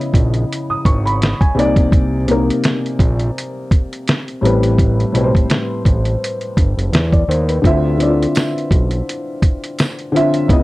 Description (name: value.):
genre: lo-fi hip hop.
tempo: 84 BPM.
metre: 4/4.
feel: swing 56% on 16ths.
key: unclear.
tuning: A4 = 440 Hz.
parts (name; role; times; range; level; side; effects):
felt-muted upright piano; accompaniment; 0.0-10.6 s; A2 to D#6; -18 LUFS; left 1 dB; cassette tape, plate reverb.
lo-fi sampler-style drum kit; drums; 0.0-10.6 s; hi-hat, kick drum, snare drum; -15 LUFS; equal; none.
fat analog bass; bass; 0.1-10.6 s; F#1 to E2; -17 LUFS; equal; none.
tambourine; percussion; 8.3-10.0 s; none; -34 LUFS; right 4 dB; none.
room: light reverb.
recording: dark, warm production.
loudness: -13 LUFS.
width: side -19 dB against mid.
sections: 0.0-10.6 A section.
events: none.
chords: 0.0 C#m9; 1.6 Cm9; 4.4 Am9; 7.6 Dm9.